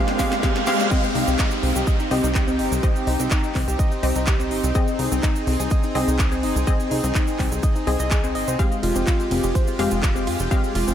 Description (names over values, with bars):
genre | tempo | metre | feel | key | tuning
progressive house | 125 BPM | 4/4 | straight | C minor | A4 = 438 Hz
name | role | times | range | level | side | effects
supersaw pad | sustained chords | 0.0-10.9 s | Bb2 to F5 | -29 LUFS | right 1 dB | lush chorus, sidechain pumping
wide unison pluck | stabs | 0.0-10.9 s | Ab3 to F5 | -26 LUFS | left 2 dB | sidechain pumping, ping-pong delay
riser, reverse cymbal and downlifter | sound effects | 0.0-4.8 s | none | -32 LUFS | right 3 dB | none
house drum kit | drums | 0.1-10.9 s | handclaps, hi-hat, ride cymbal, snare drum | -31 LUFS | equal | small room reverb
soft round pluck | arpeggios | 0.2-10.9 s | C4 to Ab5 | -26 LUFS | left 1 dB | chorus, sidechain pumping, ping-pong delay
electronic kick drum | drums | 0.2-10.6 s | none | -21 LUFS | equal | small room reverb
tube shaker | percussion | 0.2-10.9 s | none | -35 LUFS | right 4 dB | none
plucky analog bass | bass | 1.2-10.9 s | F1 to F2 | -25 LUFS | equal | sidechain pumping
room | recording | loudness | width
moderate cathedral reverb, RT60 6.4 s | dreamy mix soaked in reverb | -19 LUFS | side -10 dB against mid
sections
0.9-10.9 A section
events
drum fill 0.0-0.9; riser 0.0-0.9; reverse cymbal 0.0-0.9; drop 0.9-10.9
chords
0.0 Bbadd9; 0.9 Cm; 4.8 Ab; 8.6 Fmadd9